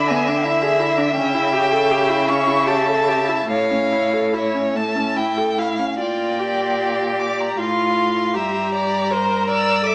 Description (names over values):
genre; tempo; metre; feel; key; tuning
classical, slow romantic movement for string quartet; 71-86 BPM; 3/4; rubato; unclear; A4 = 441 Hz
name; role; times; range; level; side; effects
warm violin; melody; 0.0-9.9 s; E5 to E6; -22 LUFS; left 1 dB; none
rich violin; second line; 0.0-9.9 s; C5 to A5; -22 LUFS; equal; none
rich viola; accompaniment; 0.0-9.9 s; A3 to Bb4; -22 LUFS; equal; none
rich cello; bass; 0.0-9.9 s; G2 to D3; -23 LUFS; equal; none
room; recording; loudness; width
moderate recital hall reverb, RT60 1.7 s; small speaker sound; -16 LUFS; side -28 dB against mid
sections
0.0-9.9 A section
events
none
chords
0.0 E7/D; 1.2 A7/C#; 3.5 A; 6.0 Bb6; 8.4 Edim/G